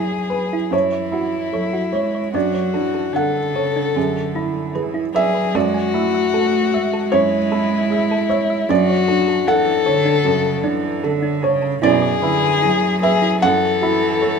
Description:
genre	neoclassical piano and strings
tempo	76 BPM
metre	4/4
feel	rubato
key	unclear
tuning	A4 = 439 Hz
part	dark violin	melody	0.0-14.4 s	E4 to A4	-20 LUFS	left 8 dB	none
part	warm cello	second line	0.0-14.4 s	B2 to A3	-23 LUFS	right 2 dB	none
part	felt-muted upright piano	accompaniment	0.0-14.4 s	F#2 to F#5	-20 LUFS	right 4 dB	none
part	thumb-piano-like synth pluck	arpeggios	0.0-14.3 s	D4 to G#5	-27 LUFS	right 3 dB	chorus
room	light reverb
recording	minimal, uncompressed stereo recording, faint mains hum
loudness	-16 LUFS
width	side -6 dB against mid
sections	0.0-14.4 A section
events	none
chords	0.0 E7/F#; 0.7 F#m7; 2.3 Dmaj7/F#; 4.0 E7/F#; 5.5 Amaj7/F#; 8.7 Dmaj7/F#; 11.8 E7/F#; 13.4 F#m7

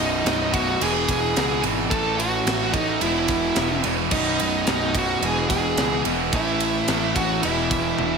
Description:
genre	hard rock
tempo	109 BPM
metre	4/4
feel	straight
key	unclear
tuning	A4 = 442 Hz
part	dark smooth lead guitar	melody	0.0-8.2 s	D#4 to A4	-26 LUFS	equal	overdrive, digital delay
part	fuzz lead guitar	second line	0.0-8.2 s	D#5 to A5	-30 LUFS	right 2 dB	distortion, slapback echo, digital delay
part	high-gain distorted guitar	riff	0.0-8.2 s	B1 to A3	-29 LUFS	right 2 dB	distortion, slapback echo
part	overdriven electric guitar	riff	0.0-8.2 s	B1 to A3	-28 LUFS	right 12 dB	slapback echo
part	overdriven semi-hollow guitar	riff	0.0-8.2 s	B1 to A3	-29 LUFS	left 12 dB	none
part	fuzz picked electric bass	bass	0.0-8.2 s	B0 to C#2	-29 LUFS	right 1 dB	overdrive
part	tight metal drum kit	drums	0.3-8.1 s	crash cymbal, kick drum, ride cymbal, snare drum, toms	-26 LUFS	right 1 dB	none
room	moderate lush hall reverb, RT60 2.1 s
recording	big arena sound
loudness	-19 LUFS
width	side -5 dB against mid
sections	0.0-8.2 A section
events	drum fill 8.0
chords	0.0 B; 0.8 E; 1.9 A5; 3.0 E5; 4.1 B; 5.2 E; 6.3 A5; 7.4 E5

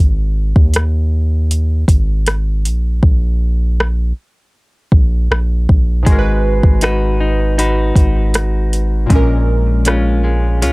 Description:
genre	contemporary R&B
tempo	79 BPM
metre	4/4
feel	straight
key	G# dorian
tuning	A4 = 441 Hz
part	long sustained 808-style bass	bass	0.0-10.7 s	G#1 to D#2	-15 LUFS	equal	none
part	smooth R&B drum kit	drums	0.6-10.7 s	hi-hat, kick drum, rim click	-12 LUFS	equal	none
part	warm analog keys	accompaniment	6.0-10.7 s	G#2 to B4	-20 LUFS	equal	chorus
part	direct-recorded clean electric guitar	arpeggios	6.1-10.7 s	A#2 to B4	-20 LUFS	left 2 dB	spring reverb, analog delay
room	little or no reverb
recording	dry, gritty hardware recording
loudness	-12 LUFS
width	side -24 dB against mid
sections	0.0-10.7 A section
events	hi-hats muted 3.0-6.1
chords	0.0 G#5; 3.0 N.C.; 6.1 G#m7; 9.1 A#m7

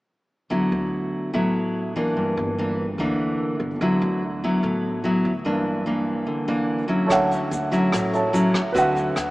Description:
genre	bossa nova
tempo	146 BPM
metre	4/4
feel	straight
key	D major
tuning	A4 = 441 Hz
part	nylon-string guitar	accompaniment	0.5-9.3 s	G2 to B4	-22 LUFS	equal	none
part	upright bass	bass	0.5-9.3 s	G1 to D2	-32 LUFS	equal	none
part	warm baby grand piano	accompaniment	7.1-9.3 s	A4 to A5	-22 LUFS	right 1 dB	none
part	jazz brush drum kit	drums	7.1-9.3 s	hi-hat, kick drum, rim click	-31 LUFS	equal	none
part	tube shaker	percussion	7.1-9.3 s	none	-43 LUFS	right 3 dB	none
room	wet cathedral reverb, RT60 6.6 s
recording	in a vast, echoing space, small speaker sound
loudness	-20 LUFS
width	side -19 dB against mid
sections	0.5-7.1 A section; 7.1-9.3 B section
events	none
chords	0.5 D69; 2.2 Gm6; 3.8 D69; 5.5 Gm6; 7.1 Dmaj9; 8.7 D13

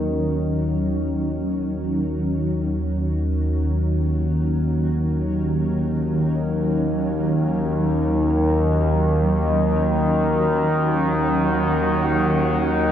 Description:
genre	dark ambient drone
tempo	free time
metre	none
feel	none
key	Eb minor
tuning	A4 = 440 Hz
part	granular cloud pad	sustained chords	0.0-12.9 s	Eb3 to Db4	-24 LUFS	right 1 dB	built-in reverb
part	analog drone	drone	0.0-12.9 s	Eb2 to Eb3	-20 LUFS	equal	chorus
part	wind-like tuned noise texture	texture	11.5-12.9 s	Gb4 to Gb5	-30 LUFS	right 2 dB	built-in reverb
room	wet huge ambient reverb, RT60 7.3 s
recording	dark, warm production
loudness	-19 LUFS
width	side -10 dB against mid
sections	0.0-12.9 A section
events	none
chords	0.0 Ebm

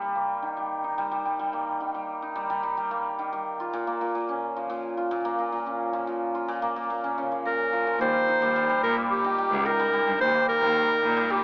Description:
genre	folktronica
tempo	109 BPM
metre	4/4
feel	straight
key	unclear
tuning	A4 = 440 Hz
part	hammered dulcimer	arpeggios	0.0-11.4 s	Bb2 to F4	-26 LUFS	equal	low-pass filter, plate reverb, digital delay
part	bright clarinet	melody	7.5-11.4 s	G4 to C5	-23 LUFS	equal	vintage 12-bit sampler grit
part	clear cello	bass	8.0-11.4 s	Db2 to Bb2	-30 LUFS	equal	none
room	moderate studio reverb, RT60 0.6 s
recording	AM radio sound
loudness	-24 LUFS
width	side -26 dB against mid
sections	0.0-8.0 A section; 8.0-11.4 B section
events	none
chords	0.0 Eb; 3.6 Bbm; 8.0 Eb

